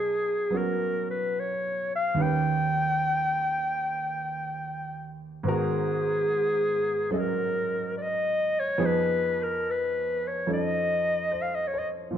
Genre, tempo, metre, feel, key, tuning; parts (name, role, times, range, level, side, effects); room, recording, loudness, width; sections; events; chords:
jazz ballad; 72 BPM; 4/4; swing 67% on 8ths; A4 = 438 Hz
mellow clarinet; melody; 0.0-11.9 s; Ab4 to G5; -26 LUFS; left 1 dB
clear baby grand piano; accompaniment; 0.0-12.2 s; Eb2 to Eb5; -30 LUFS; right 2 dB
wet large studio reverb, RT60 1.2 s; dark, warm production; -25 LUFS; side -9 dB against mid
0.0-12.1 A section
0.0 Bmaj9; 2.2 Eb7b13; 5.5 Abm9; 8.8 Fm7b5; 10.5 F7b13